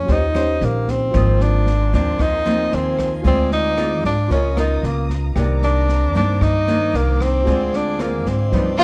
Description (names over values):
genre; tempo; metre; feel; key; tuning
bossa nova; 114 BPM; 4/4; straight; unclear; A4 = 440 Hz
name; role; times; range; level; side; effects
mellow tenor saxophone; melody; 0.0-8.8 s; Bb3 to Eb4; -23 LUFS; equal; none
nylon-string guitar; accompaniment; 0.0-8.8 s; G2 to C5; -26 LUFS; equal; none
warm baby grand piano; accompaniment; 0.0-8.8 s; Eb4 to Eb6; -34 LUFS; equal; none
upright bass; bass; 0.0-8.8 s; G1 to Ab2; -22 LUFS; equal; none
open jazz drum kit; drums; 0.1-8.8 s; kick drum, rim click, snare drum; -29 LUFS; equal; none
muted symphonic violin section; sustained chords; 1.2-8.8 s; Bb4 to Eb6; -37 LUFS; equal; none
clear studio violin section; second line; 8.8 s; F4; -14 LUFS; equal; none
room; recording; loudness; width
light reverb; dark, warm production; -18 LUFS; mono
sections
0.0-8.8 A section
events
none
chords
0.1 Eb13; 1.1 Ab69; 3.3 Dm7b5; 4.3 Db13; 5.4 Cm9; 7.5 Dm7b5